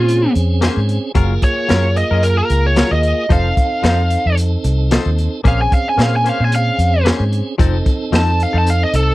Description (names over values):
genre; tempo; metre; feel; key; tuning
straight-eighth soul blues; 112 BPM; 4/4; swing 55% on 16ths; Bb minor; A4 = 440 Hz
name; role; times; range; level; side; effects
biting lead guitar; melody; 0.0-9.1 s; F4 to A5; -17 LUFS; equal; overdrive
tonewheel organ; accompaniment; 0.0-9.1 s; Bb3 to A4; -23 LUFS; right 4 dB; slow rotary speaker, overdrive
direct-recorded clean electric guitar; stabs; 0.0-8.7 s; F3 to C5; -24 LUFS; left 7 dB; spring reverb
vintage muted fingered electric bass; bass; 0.0-9.1 s; F1 to Bb2; -16 LUFS; equal; none
crunchy breakbeat drum kit; drums; 0.1-9.1 s; hi-hat, kick drum, snare drum; -17 LUFS; equal; none
room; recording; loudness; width
little or no reverb; dry, close 1970s-style studio recording; -13 LUFS; side -18 dB against mid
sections
0.0-9.1 A section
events
lead electric guitar solo 0.0-9.1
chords
0.0 Bbm9; 1.2 Gbmaj7; 3.3 F7; 5.5 Bbm9; 7.6 F7